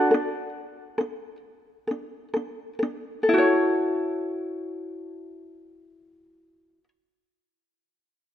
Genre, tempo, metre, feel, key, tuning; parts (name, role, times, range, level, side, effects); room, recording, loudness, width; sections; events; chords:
pop; 63-70 BPM; 4/4; swing 60% on 16ths; A major; A4 = 441 Hz
ukulele; accompaniment; 0.0-6.9 s; D4 to D5; -23 LUFS; equal
moderate lush hall reverb, RT60 2.2 s; rough home demo mix; -24 LUFS; side -11 dB against mid
0.0-3.3 A section; 3.3-7.1 B section
slowing down 0.0-3.3
0.0 D5; 3.3 A6